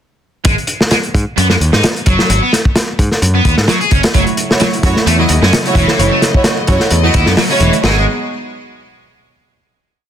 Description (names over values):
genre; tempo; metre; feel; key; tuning
breakbeat, breaks; 130 BPM; 4/4; swing 55% on 16ths; G# phrygian; A4 = 439 Hz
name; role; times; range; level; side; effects
distorted electric guitar; riff; 0.4-8.1 s; E3 to G#4; -16 LUFS; equal; distortion, tube saturation, digital delay
crunchy breakbeat drum kit; drums; 0.4-8.0 s; china cymbal, hi-hat, kick drum, snare drum; -13 LUFS; equal; none
modern bright picked electric bass; bass; 0.5-8.1 s; E1 to G#2; -14 LUFS; equal; none
warm chamber string section; sustained chords; 4.1-8.1 s; B2 to D#5; -22 LUFS; left 2 dB; sidechain pumping
rich studio string section; stabs; 4.1-8.0 s; A3 to D#5; -17 LUFS; right 3 dB; digital delay
room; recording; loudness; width
small room reverb; dense, heavily limited modern master; -10 LUFS; side -9 dB against mid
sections
0.5-7.8 drop; 7.8-9.7 final chord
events
drop 0.5-7.8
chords
0.5 G#m7; 4.1 F#m7; 7.8 G#m7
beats
| 0.45 0.91 1.38 1.84 | 2.30 2.76 3.22 3.68 | 4.14 4.61 5.07 5.53 | 5.99 6.45 6.91 7.38 | 7.84